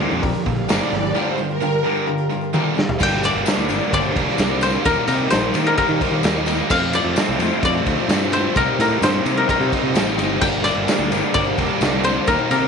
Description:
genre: classic rock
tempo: 129 BPM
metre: 4/4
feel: straight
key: G minor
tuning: A4 = 441 Hz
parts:
  - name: clear baby grand piano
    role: accompaniment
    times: 0.0-12.7 s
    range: Bb3 to Eb5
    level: -31 LUFS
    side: left 12 dB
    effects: none
  - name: picked twelve-string acoustic guitar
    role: accompaniment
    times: 0.0-12.7 s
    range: G2 to A4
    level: -31 LUFS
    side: right 13 dB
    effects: none
  - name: crunchy overdriven guitar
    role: riff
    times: 0.0-12.7 s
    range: G2 to F4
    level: -25 LUFS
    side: left 13 dB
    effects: phaser
  - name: tight distorted guitar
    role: riff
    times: 0.0-12.7 s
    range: F2 to Eb4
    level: -25 LUFS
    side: right 14 dB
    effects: distortion
  - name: growling fingered electric bass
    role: bass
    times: 0.0-12.7 s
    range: F1 to Eb3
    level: -24 LUFS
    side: right 1 dB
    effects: overdrive
  - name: raw garage drum kit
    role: drums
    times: 0.2-12.6 s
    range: crash cymbal, hi-hat, kick drum, ride cymbal, snare drum, toms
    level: -22 LUFS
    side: equal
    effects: none
  - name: string machine, violas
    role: sustained chords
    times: 0.5-12.7 s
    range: G3 to F5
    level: -28 LUFS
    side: right 1 dB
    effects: none
  - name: tambourine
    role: percussion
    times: 0.7-12.6 s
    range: none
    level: -37 LUFS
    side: left 16 dB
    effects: none
  - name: koto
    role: melody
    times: 3.0-12.7 s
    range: Bb4 to G5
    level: -22 LUFS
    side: left 3 dB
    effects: tape echo
room: light reverb, studio ambience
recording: 1960s-style stereo with parts hard left and right, nothing above 10.9 kHz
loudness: -16 LUFS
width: side -6 dB against mid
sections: 0.0-3.0 A section; 3.0-12.7 B section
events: string machine solo 0.0-3.0; drum fill 2.5-3.0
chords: 0.0 Bb6; 1.2 Gm7; 3.0 Gm; 4.8 Eb; 6.7 F; 8.6 Cm; 10.4 Gm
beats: 0.23 0.69 | 1.15 1.61 2.07 2.54 | 3.00 3.46 3.92 4.39 | 4.85 5.31 5.78 6.24 | 6.70 7.17 7.63 8.10 | 8.56 9.02 9.49 9.95 | 10.41 10.88 11.34 11.80 | 12.27

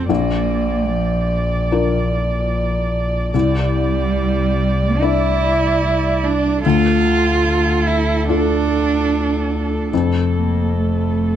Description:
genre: neoclassical piano and strings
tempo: 74 BPM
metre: 4/4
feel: rubato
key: unclear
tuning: A4 = 440 Hz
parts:
  - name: dark cello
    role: second line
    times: 0.0-11.4 s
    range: F3 to F4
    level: -20 LUFS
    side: right 5 dB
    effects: none
  - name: dark viola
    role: accompaniment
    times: 0.0-11.4 s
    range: A4 to D5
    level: -24 LUFS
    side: right 3 dB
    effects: none
  - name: felt-muted upright piano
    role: accompaniment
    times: 0.0-11.4 s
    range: Bb1 to D5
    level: -21 LUFS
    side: left 5 dB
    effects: none
  - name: dark double bass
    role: bass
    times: 0.0-11.4 s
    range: F1 to D2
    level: -20 LUFS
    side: left 1 dB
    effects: none
room: moderate large studio reverb, RT60 1.5 s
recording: none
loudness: -15 LUFS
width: side -10 dB against mid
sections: 0.0-11.4 A section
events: none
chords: 0.1 Bb; 3.3 Cadd9; 6.6 Dm; 9.9 F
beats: | 0.09 0.90 1.71 2.53 | 3.34 4.15 5.00 5.83 | 6.64 7.45 8.27 9.10 | 9.92 10.74

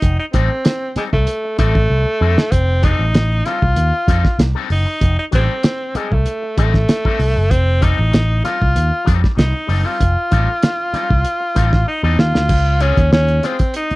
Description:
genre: funk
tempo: 96 BPM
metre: 4/4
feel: straight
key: F mixolydian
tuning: A4 = 440 Hz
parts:
  - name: bright tenor saxophone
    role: melody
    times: 0.0-14.0 s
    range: Ab3 to F4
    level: -20 LUFS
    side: equal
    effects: none
  - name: picked electric bass with an envelope filter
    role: bass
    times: 0.0-13.9 s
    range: F1 to F2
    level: -16 LUFS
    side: equal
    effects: none
  - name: cloth-damped thuddy drum kit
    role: drums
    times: 0.0-14.0 s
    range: crash cymbal, hi-hat, kick drum, snare drum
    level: -16 LUFS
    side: equal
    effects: none
  - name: electric guitar with an envelope filter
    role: accompaniment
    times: 0.3-13.9 s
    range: G3 to A4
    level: -26 LUFS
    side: left 9 dB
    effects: none
room: studio reverb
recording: dry, close 1970s-style studio recording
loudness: -13 LUFS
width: side -20 dB against mid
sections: 0.0-12.5 A section; 12.5-14.0 B section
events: drum fill 1.9-2.5, 11.9-12.5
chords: 0.0 F9; 12.5 Dbmaj7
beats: | 0.02 0.65 1.27 1.90 | 2.52 3.14 3.77 4.39 | 5.01 5.64 6.26 6.89 | 7.51 8.13 8.76 9.38 | 10.01 10.63 11.25 11.87 | 12.50 13.12 13.74

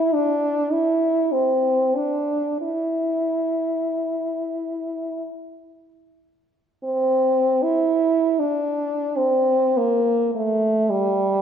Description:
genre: classical, free, expressive piece for unaccompanied French horn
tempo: 33-55 BPM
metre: 3/4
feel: rubato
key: unclear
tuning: A4 = 440 Hz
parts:
  - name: mellow French horn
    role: solo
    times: 0.0-11.4 s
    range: G3 to E4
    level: -19 LUFS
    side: equal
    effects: none
room: wet concert hall reverb, RT60 1.8 s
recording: minimal, uncompressed stereo recording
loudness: -19 LUFS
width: side -8 dB against mid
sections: 0.0-6.8 A section; 6.8-11.4 B section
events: none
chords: none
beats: 0.13 1.32 | 2.64 3.97 5.32 | 6.83 8.01 9.15 | 10.33

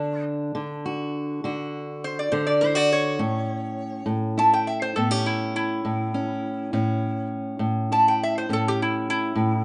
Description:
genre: acoustic country blues, solo or duo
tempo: 68 BPM (dotted quarters)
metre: 12/8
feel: straight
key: A major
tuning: A4 = 440 Hz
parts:
  - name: lap resonator guitar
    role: melody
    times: 0.0-9.6 s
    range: E4 to A5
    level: -26 LUFS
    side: equal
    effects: none
  - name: fingerpicked steel-string acoustic guitar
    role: accompaniment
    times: 0.0-9.6 s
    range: A2 to F#4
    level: -28 LUFS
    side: equal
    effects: none
room: moderate studio reverb, RT60 0.5 s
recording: rough home demo mix, nothing above 10.3 kHz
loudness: -25 LUFS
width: mono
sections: 0.0-9.6 A section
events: resonator guitar played with a steel bar solo 0.0-9.6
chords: 0.0 D; 3.2 A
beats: 0.56 1.44 2.32 | 3.20 4.08 4.96 5.85 | 6.73 7.61 8.49 9.37

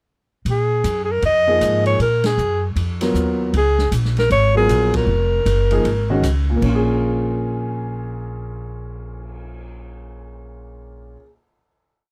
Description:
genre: modal jazz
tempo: 156 BPM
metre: 4/4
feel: swing 63% on 8ths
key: Bb phrygian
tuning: A4 = 442 Hz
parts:
  - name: breathy alto saxophone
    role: melody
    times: 0.5-6.2 s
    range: Ab4 to Eb5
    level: -20 LUFS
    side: equal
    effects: none
  - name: upright bass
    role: bass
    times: 0.5-11.2 s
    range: F1 to Bb2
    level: -24 LUFS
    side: equal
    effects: none
  - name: open jazz drum kit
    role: drums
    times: 0.5-9.6 s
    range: crash cymbal, cymbal swell, hi-hat, kick drum, ride cymbal, snare drum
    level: -33 LUFS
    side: equal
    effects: none
  - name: warm concert grand piano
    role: accompaniment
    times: 1.5-11.3 s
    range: Bb2 to Bb4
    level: -25 LUFS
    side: equal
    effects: none
room: little or no reverb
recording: dry, close 1970s-style studio recording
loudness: -18 LUFS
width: mono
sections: 0.5-6.6 A section; 6.6-9.7 final chord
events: band accent 2.2, 4.9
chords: 0.5 Bbm7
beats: | 0.47 0.85 1.23 1.62 | 2.00 2.38 2.77 3.15 | 3.54 3.92 4.31 4.69 | 5.08 5.46 5.85 6.24 | 6.62 7.00 7.39 7.77 | 8.16 8.54 8.93 9.31

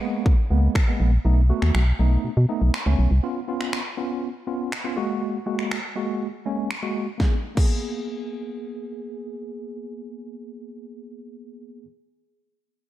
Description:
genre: dance-pop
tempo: 121 BPM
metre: 4/4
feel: straight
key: G# minor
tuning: A4 = 440 Hz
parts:
  - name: tine electric piano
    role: accompaniment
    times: 0.0-11.9 s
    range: G#3 to G#4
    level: -28 LUFS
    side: right 1 dB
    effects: fast stereo tremolo, sidechain pumping, low-pass filter
  - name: pop drum kit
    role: drums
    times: 0.3-7.7 s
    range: crash cymbal, finger snaps, kick drum, snare drum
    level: -24 LUFS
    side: equal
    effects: none
  - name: organ-like FM bass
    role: bass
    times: 0.5-3.2 s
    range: A#1 to B2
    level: -18 LUFS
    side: equal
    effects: sidechain pumping
room: digital ambience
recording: dark, warm production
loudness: -21 LUFS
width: side -13 dB against mid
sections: 0.0-7.2 A section; 7.2-11.2 B section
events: none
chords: 0.0 G#madd9; 1.2 B7; 3.2 C#7; 5.0 F#add9; 7.2 G#madd9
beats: 0.26 0.75 | 1.25 1.75 2.24 2.74 | 3.23 3.73 4.22 4.72 | 5.22 5.71 6.21 6.70 | 7.20 7.70 8.19 8.69 | 9.18 9.68 10.17 10.67

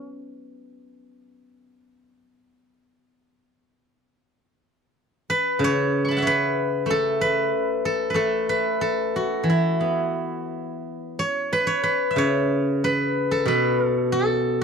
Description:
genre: chinese traditional, Chinese solo plucked strings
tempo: 93 BPM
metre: 4/4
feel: rubato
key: E zhi mode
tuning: A4 = 444 Hz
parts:
  - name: steel-string zither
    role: solo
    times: 0.0-0.1, 5.3-14.6 s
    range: B2 to C#6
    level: -20 LUFS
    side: equal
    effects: none
room: light reverb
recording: dry, close 1970s-style studio recording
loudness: -20 LUFS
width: side -6 dB against mid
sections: 0.0-10.8 A section; 10.8-14.6 B section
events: none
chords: none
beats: | 0.40 1.07 1.74 2.39 | 3.03 3.67 4.32 4.96 | 5.60 6.24 6.87 7.51 | 8.15 8.80 9.46 10.15 | 10.83 11.51 12.18 12.82 | 13.47 14.11

